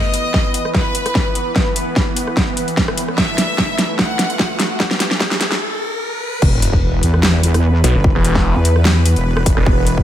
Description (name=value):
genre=heavy wobble dubstep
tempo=148 BPM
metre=4/4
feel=swing 54% on 16ths, half-time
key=unclear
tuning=A4 = 440 Hz
part: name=clear studio violin section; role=melody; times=0.0-4.7 s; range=B4 to F#5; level=-23 LUFS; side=left 1 dB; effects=digital delay
part: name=supersaw pad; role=sustained chords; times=0.0-10.0 s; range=E3 to B4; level=-24 LUFS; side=right 1 dB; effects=phaser, sidechain pumping, low-pass filter
part: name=riser and sub drop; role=sound effects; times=0.0-8.0 s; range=none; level=-26 LUFS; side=equal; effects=none
part: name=dubstep drum kit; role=drums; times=0.1-10.0 s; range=crash cymbal, hi-hat, rim click, snare drum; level=-19 LUFS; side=equal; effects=studio reverb
part: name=electronic kick drum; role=drums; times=0.3-10.0 s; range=none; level=-18 LUFS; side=equal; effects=overdrive, studio reverb
part: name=wobble bass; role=bass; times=6.4-10.0 s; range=E1 to E2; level=-14 LUFS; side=equal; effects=chorus, overdrive
part: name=snarling distorted saw bass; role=bass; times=7.8-9.6 s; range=E1 to B1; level=-15 LUFS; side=equal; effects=distortion, overdrive
room=light reverb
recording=high-pass filter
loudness=-14 LUFS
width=side -11 dB against mid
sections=0.0-6.4 A section; 6.4-10.0 B section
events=build-up 0.0-6.4; drum fill 0.0-5.6; riser 0.0-6.4; filter sweep 0.0-6.4; break 5.6-6.4; drop 6.4-10.0; impact 6.4-8.0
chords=0.0 E5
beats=0.34 0.74 1.15 | 1.56 1.96 2.37 2.77 | 3.18 3.58 3.99 4.39 | 4.80 5.21 5.61 6.02 | 6.42 6.83 7.23 7.64 | 8.04 8.45 8.85 9.26 | 9.66